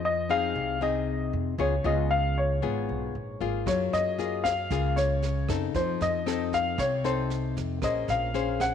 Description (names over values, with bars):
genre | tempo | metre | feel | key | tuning
bossa nova | 116 BPM | 4/4 | straight | unclear | A4 = 439 Hz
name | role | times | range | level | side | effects
dark grand piano | melody | 0.0-8.7 s | C5 to Gb5 | -28 LUFS | left 2 dB | none
nylon-string guitar | accompaniment | 0.0-8.7 s | Ab2 to C5 | -30 LUFS | left 10 dB | none
upright bass | bass | 0.0-8.7 s | Ab1 to Gb2 | -31 LUFS | right 3 dB | none
jazz brush drum kit | drums | 3.7-8.7 s | kick drum, rim click, snare drum | -37 LUFS | right 8 dB | none
room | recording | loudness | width
light reverb, studio ambience | 1960s-style stereo with parts hard left and right | -25 LUFS | side -8 dB against mid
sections
0.0-8.7 A section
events
none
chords
0.0 Fm7; 1.6 Db7; 3.7 Gbmaj9; 5.7 F7; 7.8 Bbm9